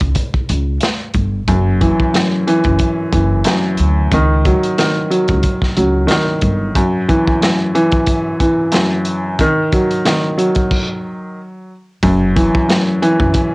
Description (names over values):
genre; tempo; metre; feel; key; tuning
hip hop, boom-bap hip-hop; 91 BPM; 4/4; swing 55% on 16ths; unclear; A4 = 440 Hz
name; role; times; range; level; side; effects
upright bass; bass; 0.0-6.7, 12.0-13.3 s; F#1 to D2; -16 LUFS; equal; transformer saturation
crunchy breakbeat drum kit; drums; 0.0-13.5 s; crash cymbal, hi-hat, kick drum, snare drum; -18 LUFS; equal; none
warm grand piano; accompaniment; 1.5-13.5 s; F#2 to F#3; -14 LUFS; equal; high-pass filter, low-pass filter
room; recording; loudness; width
little or no reverb; home recording on cassette; -12 LUFS; side -24 dB against mid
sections
0.0-12.0 A section; 12.0-13.5 B section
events
break 0.0-1.5; stop 10.7-12.0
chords
0.0 N.C.; 1.5 Dadd9/F# (rootless); 4.1 C#sus24; 6.8 Esus2/F#; 9.4 D#m; 12.0 Dadd9/F# (rootless)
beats
0.16 0.82 | 1.48 2.14 2.80 3.46 | 4.12 4.78 5.43 6.09 | 6.75 7.41 8.07 8.73 | 9.39 10.05 10.71 11.37 | 12.03 12.69 13.35